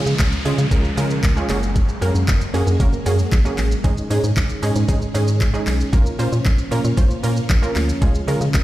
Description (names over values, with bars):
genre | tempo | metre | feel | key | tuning
dance-pop | 115 BPM | 4/4 | straight | Bb minor | A4 = 440 Hz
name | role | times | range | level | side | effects
wide unison pluck | accompaniment | 0.0-8.6 s | Ab3 to C5 | -24 LUFS | right 2 dB | sidechain pumping
string machine, violins | sustained chords | 0.0-8.6 s | Eb3 to Db4 | -28 LUFS | equal | ensemble chorus, sidechain pumping
downlifter | sound effects | 0.0-3.8 s | none | -31 LUFS | equal | none
organ-like FM bass | bass | 0.1-8.6 s | Gb1 to Db3 | -20 LUFS | equal | sidechain pumping
smooth R&B drum kit | drums | 0.1-8.6 s | handclaps, hi-hat, kick drum, shaker | -20 LUFS | equal | none
room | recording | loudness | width
little or no reverb | played on a big sound system in a bare room, stone room reverb | -16 LUFS | side -15 dB against mid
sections
0.0-8.6 A section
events
none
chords
0.0 Db; 1.5 Gbadd9; 3.8 Absus4; 5.9 Bbm; 8.0 Db